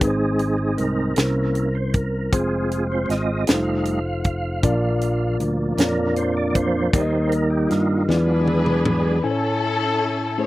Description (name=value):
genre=slow gospel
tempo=52 BPM (dotted quarters)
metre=6/8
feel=straight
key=unclear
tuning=A4 = 440 Hz
part: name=mellow tine electric piano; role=accompaniment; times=0.0-10.5 s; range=Ab2 to G#5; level=-24 LUFS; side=left 2 dB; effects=medium stereo tremolo
part: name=tonewheel organ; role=sustained chords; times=0.0-9.2 s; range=F3 to F5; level=-24 LUFS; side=right 2 dB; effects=fast rotary speaker, chorus vibrato
part: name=modern bright fingered electric bass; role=bass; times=0.0-9.2 s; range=F1 to G2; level=-24 LUFS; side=equal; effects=none
part: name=tight funk drum kit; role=drums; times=0.0-9.0 s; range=hi-hat, kick drum, snare drum, toms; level=-22 LUFS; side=equal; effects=none
part: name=warm studio string section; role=melody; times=8.1-10.5 s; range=C#4 to C#5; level=-23 LUFS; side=left 3 dB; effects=none
room=little or no reverb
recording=recorded outdoors, with no room sound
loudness=-18 LUFS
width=side -17 dB against mid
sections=0.0-9.2 A section; 9.2-10.5 B section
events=tonewheel organ solo 0.0-9.2; drum fill 8.1-9.2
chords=0.0 Ab; 1.2 C7b9; 2.3 Fm; 3.5 F7; 4.6 Bb; 6.9 Eb; 8.1 E7; 9.2 Amaj7